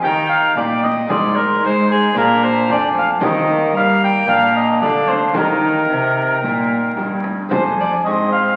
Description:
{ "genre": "classical, renaissance-style consort dance", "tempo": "112 BPM", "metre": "4/4", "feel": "straight", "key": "unclear", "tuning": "A4 = 441 Hz", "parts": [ { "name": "mellow hollow alto recorder", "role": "melody", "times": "0.0-8.6 s", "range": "F5 to Db6", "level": "-25 LUFS", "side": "equal", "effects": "none" }, { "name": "mellow cor anglais", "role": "second line", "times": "0.0-8.6 s", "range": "Ab4 to G5", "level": "-20 LUFS", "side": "equal", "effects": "none" }, { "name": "lute", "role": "accompaniment", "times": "0.0-8.6 s", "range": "F2 to C5", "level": "-27 LUFS", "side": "equal", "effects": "none" }, { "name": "warm bassoon", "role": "accompaniment", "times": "0.0-8.6 s", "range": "Bb3 to Eb4", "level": "-26 LUFS", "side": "equal", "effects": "none" }, { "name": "warm cello", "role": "bass", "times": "0.0-8.6 s", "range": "F2 to Ab3", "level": "-23 LUFS", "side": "equal", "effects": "none" }, { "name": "frame drum", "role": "percussion", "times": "0.0-7.8 s", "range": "none", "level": "-29 LUFS", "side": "equal", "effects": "none" } ], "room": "wet recital hall reverb, RT60 1.6 s", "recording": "very old 78 rpm record, vinyl crackle", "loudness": "-16 LUFS", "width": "mono", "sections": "0.0-8.6 A section", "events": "none", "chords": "0.0 Eb; 1.1 Ab; 2.2 Bb; 3.2 Eb; 4.3 Bb; 5.4 Eb; 7.5 Fm", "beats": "0.04 0.57 | 1.10 1.64 2.17 2.70 | 3.23 3.77 4.30 4.83 | 5.37 5.91 6.45 6.98 | 7.52 8.06" }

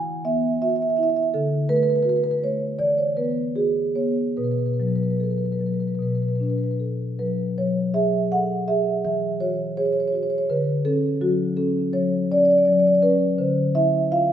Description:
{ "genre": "classical, contemporary piece for solo marimba", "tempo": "72-84 BPM", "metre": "4/4", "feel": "rubato", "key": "B dorian", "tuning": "A4 = 435 Hz", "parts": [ { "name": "marimba with soft mallets", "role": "solo", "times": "0.0-14.3 s", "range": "B2 to G#5", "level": "-20 LUFS", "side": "equal", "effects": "none" } ], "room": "wet recital hall reverb, RT60 1.6 s", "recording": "heard from further back in the room", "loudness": "-20 LUFS", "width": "side -10 dB against mid", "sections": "0.0-7.6 A section; 7.6-14.3 B section", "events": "none", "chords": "0.0 Eadd9; 1.3 D; 2.8 Esus2; 4.4 Bm7; 7.6 F#madd9; 9.1 E69; 10.5 Dmaj7; 13.4 Dmadd9", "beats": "0.61 | 1.34 2.06 2.80 3.57 | 4.37 5.20 6.00 6.79 | 7.58 8.32 9.05 9.77 | 10.49 11.20 11.92 12.66 | 13.38 14.10" }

